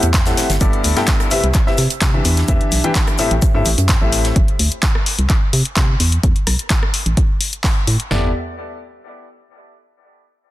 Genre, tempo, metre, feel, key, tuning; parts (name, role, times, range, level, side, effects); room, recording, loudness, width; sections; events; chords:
piano house; 128 BPM; 4/4; straight; G major; A4 = 442 Hz
clear upright piano; riff; 0.0-4.3, 8.1-8.3 s; G2 to G5; -20 LUFS; left 2 dB; sidechain pumping, low-pass filter, dub echo
organ-like FM bass; bass; 0.0-8.3 s; G1 to C3; -17 LUFS; equal; tube saturation, sidechain pumping
punchy analog drum machine; drums; 0.0-8.1 s; handclaps, hi-hat, rim click; -21 LUFS; left 1 dB
tight funk drum kit; drums; 0.0-4.4 s; hi-hat, shaker, snare drum; -28 LUFS; equal; sidechain pumping on hats, high-pass filter on hats, high-pass filter on snare, sidechain pumping on perc, high-pass filter on perc, high-pass filter on room
punchy analog drum machine; drums; 0.1-8.2 s; kick drum, snare drum, toms; -17 LUFS; equal
small room ambience; dense, heavily limited modern master; -14 LUFS; side -16 dB against mid
0.6-8.1 A section; 8.1-10.0 B section
filter sweep on FM bass 0.6-8.1
0.0 Am7; 0.6 G69; 1.3 Cmaj7; 2.2 Em7; 3.2 Am7; 4.4 G5; 5.1 N.C.; 6.0 E5; 6.9 N.C.; 8.1 G69